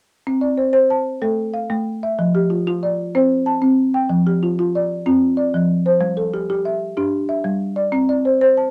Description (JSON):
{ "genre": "southern african traditional", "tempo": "125 BPM (dotted quarters)", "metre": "12/8", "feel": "straight", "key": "unclear", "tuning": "A4 = 441 Hz", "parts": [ { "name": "folk marimba with medium mallets", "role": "arpeggios", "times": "0.3-8.7 s", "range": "F3 to A5", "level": "-18 LUFS", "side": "equal", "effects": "cassette tape" } ], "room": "wet booth ambience, RT60 0.2 s", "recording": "home recording on cassette", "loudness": "-19 LUFS", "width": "mono", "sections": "0.3-8.7 A section", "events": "none", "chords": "0.3 Amadd11/C; 1.2 A5; 2.2 Dmadd11/F; 3.1 C5; 4.1 F5; 6.0 G5; 7.9 Amadd11/C", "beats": "| 0.26 0.74 1.22 1.70 | 2.18 2.66 3.14 3.62 | 4.10 4.58 5.06 5.54 | 6.01 6.49 6.97 7.45 | 7.93 8.41" }